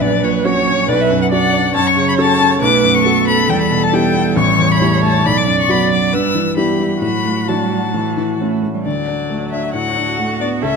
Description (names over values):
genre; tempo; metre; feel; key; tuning
quick classical-period movement for piano quartet; 136 BPM; 4/4; straight; D major; A4 = 440 Hz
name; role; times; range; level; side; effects
rich violin; melody; 0.0-10.8 s; C#5 to E6; -18 LUFS; left 7 dB; none
rich cello; second line; 0.0-10.8 s; E3 to A4; -20 LUFS; right 12 dB; none
rich viola; accompaniment; 0.0-10.8 s; F#3 to D5; -20 LUFS; right 5 dB; none
warm grand piano; accompaniment; 0.0-10.8 s; A1 to C#5; -17 LUFS; left 2 dB; none
room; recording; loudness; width
moderate scoring stage reverb, RT60 2.1 s; close, detailed microphones; -13 LUFS; side -5 dB against mid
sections
0.0-8.9 A section; 8.9-10.8 B section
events
none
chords
0.0 F#/A#; 0.9 Bm; 1.8 F#m; 2.6 B5; 3.5 Em; 4.4 A7; 5.2 Bm; 6.1 Em/G; 7.0 D/A; 7.9 A; 8.9 D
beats
| 0.02 0.45 0.89 1.32 | 1.75 2.18 2.62 3.05 | 3.49 3.93 4.37 4.81 | 5.25 5.69 6.13 6.57 | 7.03 7.48 7.94 8.40 | 8.85 9.30 9.74 10.19 | 10.63